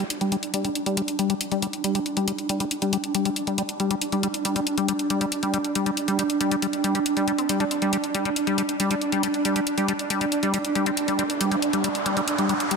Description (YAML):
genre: psychedelic trance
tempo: 138 BPM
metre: 4/4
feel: straight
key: unclear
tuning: A4 = 440 Hz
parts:
  - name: pulsing gated texture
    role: sustained chords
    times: 0.0-12.8 s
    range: D4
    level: -26 LUFS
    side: right 4 dB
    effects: chorus, built-in reverb
  - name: liquid acid bass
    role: riff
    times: 0.0-12.8 s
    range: G3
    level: -25 LUFS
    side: moving between left 6 dB and equal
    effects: chorus, auto-pan, digital delay
  - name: electronic hi-hat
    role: drums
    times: 0.1-12.8 s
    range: none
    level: -29 LUFS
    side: left 3 dB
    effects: overdrive
  - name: resonant blip pluck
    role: second line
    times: 7.4-7.9, 10.9-11.0 s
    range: C4 to D4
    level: -36 LUFS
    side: left 3 dB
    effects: none
  - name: riser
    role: sound effects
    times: 10.7-12.8 s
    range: none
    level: -30 LUFS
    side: right 1 dB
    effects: none
room: wet lush hall reverb, RT60 2.1 s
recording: dense, heavily limited modern master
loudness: -22 LUFS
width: side -4 dB against mid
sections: 0.0-12.8 A section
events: filter sweep on acid bass 0.0-12.8; filter sweep on synth texture 0.0-12.8; riser 10.7-12.8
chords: 0.0 G5